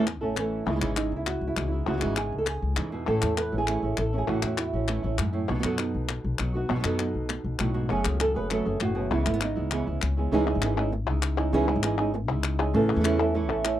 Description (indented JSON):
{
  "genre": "flamenco",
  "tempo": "199 BPM",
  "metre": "4/4",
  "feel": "straight",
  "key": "C# minor",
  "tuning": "A4 = 440 Hz",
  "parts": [
    { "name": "flamenco guitar", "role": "melody", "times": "0.0-13.8 s", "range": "F#2 to B4", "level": "-28 LUFS", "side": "right 2 dB", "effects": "none" },
    { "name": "flamenco guitar", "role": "stabs", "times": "0.0-13.8 s", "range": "B2 to G#4", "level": "-31 LUFS", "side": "right 4 dB", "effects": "none" },
    { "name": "upright bass", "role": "bass", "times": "0.0-13.8 s", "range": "F#1 to F#2", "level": "-29 LUFS", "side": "left 2 dB", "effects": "none" },
    { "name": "palmas hand claps", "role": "percussion", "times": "0.1-13.8 s", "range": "none", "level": "-32 LUFS", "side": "left 8 dB", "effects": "none" }
  ],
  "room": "light reverb",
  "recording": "dry, close 1970s-style studio recording",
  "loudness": "-24 LUFS",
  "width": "side -12 dB against mid",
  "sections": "0.7-10.3 A section; 10.3-13.8 B section",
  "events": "none",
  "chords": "0.0 A; 0.7 C#madd9; 3.1 A; 5.5 B; 7.9 F#madd9; 9.1 C#m7; 10.3 C#madd9; 12.7 A"
}